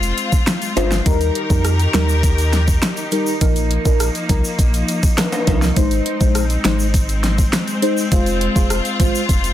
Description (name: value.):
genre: dancehall.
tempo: 102 BPM.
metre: 4/4.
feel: straight.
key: Eb major.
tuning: A4 = 440 Hz.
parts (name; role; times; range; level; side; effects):
clear studio string section; sustained chords; 0.0-9.5 s; Eb3 to Bb4; -23 LUFS; left 2 dB; sidechain pumping.
warm sub bass; bass; 0.0-9.5 s; F1 to F2; -19 LUFS; equal; none.
pop drum kit; drums; 0.0-9.5 s; finger snaps, hi-hat, kick drum, rim click, snare drum; -18 LUFS; equal; overdrive, soft clipping on snare.
tube shaker and timbales; percussion; 0.0-9.5 s; none; -28 LUFS; left 1 dB; none.
deep mellow chord stab; accompaniment; 0.8-9.2 s; F3 to C5; -21 LUFS; equal; chorus, phaser.
room: little or no reverb.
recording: dense, heavily limited modern master.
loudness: -15 LUFS.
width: side -12 dB against mid.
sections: 0.0-9.5 A section.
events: none.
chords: 0.0 Fm; 1.1 Eb; 3.4 Bbsus4; 5.8 Ab; 8.1 Fm.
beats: 0.47 | 1.06 1.65 2.24 2.82 | 3.41 4.00 4.59 5.18 | 5.77 6.35 6.94 7.53 | 8.12 8.71 9.29.